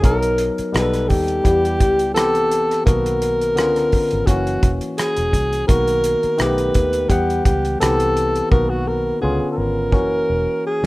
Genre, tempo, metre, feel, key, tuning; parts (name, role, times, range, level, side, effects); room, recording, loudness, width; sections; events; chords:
lush 1970s-style soul; 85 BPM; 4/4; swing 54% on 16ths; B major; A4 = 441 Hz
breathy alto saxophone; melody; 0.0-10.9 s; F#4 to B4; -19 LUFS; equal
barky tine electric piano; accompaniment; 0.0-10.9 s; D3 to F#5; -22 LUFS; left 2 dB; overdrive
vintage muted fingered electric bass; bass; 0.0-10.9 s; E1 to E2; -24 LUFS; equal
warm soul drum kit; drums; 0.0-10.9 s; hi-hat, kick drum, rim click, snare drum; -19 LUFS; equal
small room ambience; rough home demo mix; -16 LUFS; side -20 dB against mid
0.0-10.9 A section
drum fill 8.5-10.9
0.0 Bmaj7; 0.7 B7b13; 1.4 Em; 2.2 Cmaj7; 2.9 Bmaj7; 3.6 C#7b9; 4.3 F#7; 5.7 Bmaj7; 6.4 B7b13; 7.1 Emadd9; 7.8 Cmaj7; 8.5 Bmaj7; 9.2 C#7b9; 9.9 F#7